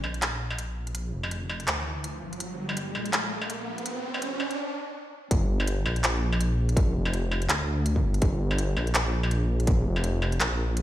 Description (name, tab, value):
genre	half-time drum and bass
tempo	165 BPM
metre	4/4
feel	swing 57% on 16ths, half-time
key	G minor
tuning	A4 = 439 Hz
part	dark detuned saw bass	bass	0.0-10.8 s	F1 to D2	-28 LUFS	equal	none
part	industrial drum kit	drums	0.0-10.8 s	handclaps, hi-hat, struck metal	-29 LUFS	equal	none
part	riser	sound effects	0.0-4.6 s	none	-35 LUFS	right 1 dB	none
part	electronic kick drum	drums	5.3-9.8 s	none	-24 LUFS	equal	distortion
room	light reverb, digital ambience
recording	played on a big sound system in a bare room, stone room reverb, high-pass filter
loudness	-25 LUFS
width	side -13 dB against mid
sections	0.0-5.3 A section; 5.3-10.8 B section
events	build-up 0.0-5.3; riser 0.0-4.6; stop 4.6-5.3; drop 5.3-10.8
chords	none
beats	0.22 0.58 | 0.95 1.31 1.68 2.04 | 2.40 2.77 3.13 3.49 | 3.86 4.22 4.58 4.95 | 5.31 5.68 6.04 6.40 | 6.77 7.13 7.49 7.86 | 8.22 8.59 8.95 9.31 | 9.68 10.04 10.40 10.77